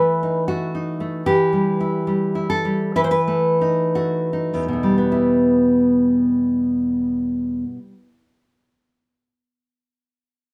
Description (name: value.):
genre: romantic piece for solo classical guitar.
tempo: 49-78 BPM.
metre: 2/4.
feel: rubato.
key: E minor.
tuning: A4 = 440 Hz.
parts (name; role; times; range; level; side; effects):
nylon-string guitar; solo; 0.0-8.2 s; E2 to C5; -20 LUFS; equal; none.
room: light reverb.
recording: none.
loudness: -20 LUFS.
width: mono.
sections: 0.0-5.1 A section; 5.1-9.8 B section.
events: slowing down 0.5-5.1.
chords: 0.0 B7/E; 1.3 Em; 3.0 B7/E; 5.1 Em.